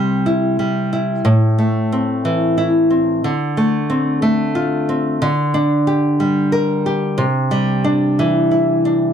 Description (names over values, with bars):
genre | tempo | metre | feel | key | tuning
pop | 61 BPM (dotted quarters) | 6/8 | straight | unclear | A4 = 441 Hz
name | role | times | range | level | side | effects
nylon-string guitar | solo | 0.0-9.1 s | A2 to Bb4 | -14 LUFS | equal | none
room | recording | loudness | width
studio ambience | dry, close 1970s-style studio recording | -14 LUFS | side -8 dB against mid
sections
0.0-1.3 A section; 1.3-9.1 B section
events
none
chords
0.0 C; 1.3 Am; 3.2 Dm7; 5.2 Gm/D; 7.2 Cadd9